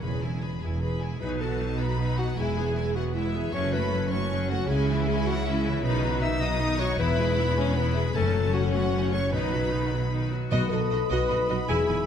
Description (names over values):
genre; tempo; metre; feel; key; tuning
cinematic, heroic adventure film score; 103 BPM (dotted quarters); 6/8; straight; B mixolydian; A4 = 441 Hz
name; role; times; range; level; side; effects
clear symphonic violin section; melody; 0.0-12.1 s; E5 to E6; -36 LUFS; equal; none
warm symphonic violin section; second line; 0.0-12.0 s; A3 to G#5; -34 LUFS; left 2 dB; none
bright studio viola section; accompaniment; 0.0-12.0 s; D#3 to G#4; -33 LUFS; left 1 dB; none
concert harp; arpeggios; 0.0-12.1 s; E2 to E6; -32 LUFS; left 7 dB; none
clear symphonic cello section; bass; 0.0-12.0 s; E2 to C#3; -32 LUFS; right 3 dB; none
clear symphonic double bass section; bass; 0.0-12.0 s; E1 to C#2; -31 LUFS; right 3 dB; none
mellow clarinet; second line; 1.2-12.1 s; D#4 to E5; -31 LUFS; equal; none
timpani; percussion; 8.1-11.1 s; F#2 to B2; -33 LUFS; left 1 dB; none
mellow cor anglais; second line; 10.5-12.1 s; D#5 to E5; -36 LUFS; right 4 dB; none
mellow hollow small flute group; second line; 10.5-12.1 s; B5; -37 LUFS; equal; none
mellow French horn section; sustained chords; 10.5-12.1 s; F#4 to B4; -27 LUFS; left 3 dB; none
room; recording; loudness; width
wet scoring stage reverb, RT60 1.7 s; none; -24 LUFS; side -8 dB against mid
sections
0.0-1.2 A section; 1.2-10.5 B section; 10.5-12.1 B section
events
build-up 0.0-1.2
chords
0.0 E; 1.2 B; 2.4 E; 3.5 F#m; 4.7 C#m; 5.8 B; 7.0 E; 8.2 F#m; 9.3 B